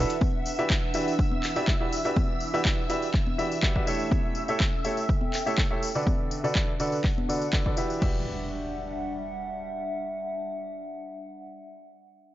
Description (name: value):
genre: piano house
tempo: 123 BPM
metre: 4/4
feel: straight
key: E dorian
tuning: A4 = 440 Hz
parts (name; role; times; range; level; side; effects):
- string machine, violins; sustained chords; 0.0-8.0 s; E5 to E6; -37 LUFS; equal; ensemble chorus, sidechain pumping
- bright baby grand piano; riff; 0.0-11.4 s; D3 to E5; -30 LUFS; equal; sidechain pumping, low-pass filter, tape echo
- warbly tape-like pad; texture; 0.0-11.6 s; E3 to G5; -34 LUFS; right 1 dB; chorus, built-in reverb, sidechain pumping
- house drum kit; drums; 0.1-8.1 s; crash cymbal, handclaps, hi-hat; -32 LUFS; equal; overdrive
- tambourine and congas; percussion; 0.1-8.0 s; none; -36 LUFS; left 4 dB; none
- electronic kick drum; drums; 0.2-8.1 s; none; -26 LUFS; equal; overdrive
- impact; sound effects; 8.1-11.5 s; none; -38 LUFS; equal; none
room: light reverb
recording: dry, gritty hardware recording, transformer saturation, cassette tape, nothing above 7.5 kHz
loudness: -25 LUFS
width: side -14 dB against mid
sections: 0.0-8.0 A section; 8.0-11.9 B section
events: filter sweep on grand piano 0.0-8.0; filter sweep on string machine 0.0-8.0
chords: 0.2 Em9; 3.9 A7; 6.1 D6; 8.0 Em9